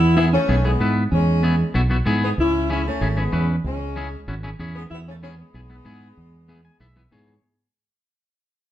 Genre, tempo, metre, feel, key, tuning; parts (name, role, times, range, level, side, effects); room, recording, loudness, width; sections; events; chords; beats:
latin; 190 BPM; 4/4; straight; E major; A4 = 443 Hz
mellow saxophone section; melody; 0.0-7.1 s; G#3 to E4; -23 LUFS; left 1 dB; plate reverb
fingered electric bass; bass; 0.0-7.4 s; G#1 to G#2; -21 LUFS; right 1 dB
clean electric guitar; accompaniment; 0.2-7.4 s; B3 to G#5; -26 LUFS; left 2 dB
wet studio reverb, RT60 0.8 s; heard from further back in the room; -18 LUFS; side -12 dB against mid
0.0-7.4 A section
fade-out 0.0-7.4; clean electric guitar fill 6.5-7.4
0.0 E; 2.4 C#m; 4.9 E
0.17 0.49 0.81 | 1.12 1.44 1.75 2.07 | 2.38 2.70 3.02 3.33 | 3.65 3.96 4.28 4.59 | 4.91 5.22 5.54 5.86 | 6.17 6.49 6.80 7.12